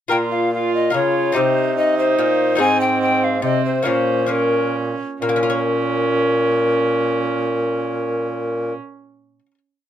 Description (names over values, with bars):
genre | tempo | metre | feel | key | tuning
classical, renaissance-style consort dance | 130-146 BPM | 3/4 | straight | Bb dorian | A4 = 440 Hz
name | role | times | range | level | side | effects
mellow hollow tenor recorder | melody | 0.1-8.7 s | Bb4 to Ab5 | -20 LUFS | left 3 dB | none
warm viola | second line | 0.1-8.7 s | C4 to F4 | -22 LUFS | right 6 dB | none
lute | accompaniment | 0.1-9.6 s | Ab2 to Db5 | -24 LUFS | left 5 dB | none
clear bassoon | bass | 0.1-8.7 s | Ab2 to Db3 | -23 LUFS | right 2 dB | none
room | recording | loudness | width
light reverb | close, detailed microphones | -16 LUFS | side -10 dB against mid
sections
0.1-5.2 A section; 5.2-8.0 final chord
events
slowing down 2.0-5.2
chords
0.1 Bbm; 1.4 Cm; 2.6 Ab; 3.9 Bbm